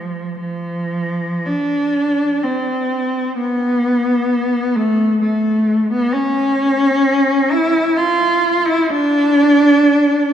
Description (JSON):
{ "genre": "classical, free, expressive piece for unaccompanied cello", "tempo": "52-67 BPM", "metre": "3/4", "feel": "rubato", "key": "unclear", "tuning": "A4 = 435 Hz", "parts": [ { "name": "rich cello", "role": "solo", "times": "0.0-10.3 s", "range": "F3 to F4", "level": "-14 LUFS", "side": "equal", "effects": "none" } ], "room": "wet church reverb, RT60 3.2 s", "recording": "none", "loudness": "-14 LUFS", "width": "side -9 dB against mid", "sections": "0.0-10.3 A section", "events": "none", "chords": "none", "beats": "| 0.39 1.47 2.45 | 3.36 4.29 5.21 | 6.14 7.05 7.96 | 8.88 9.83" }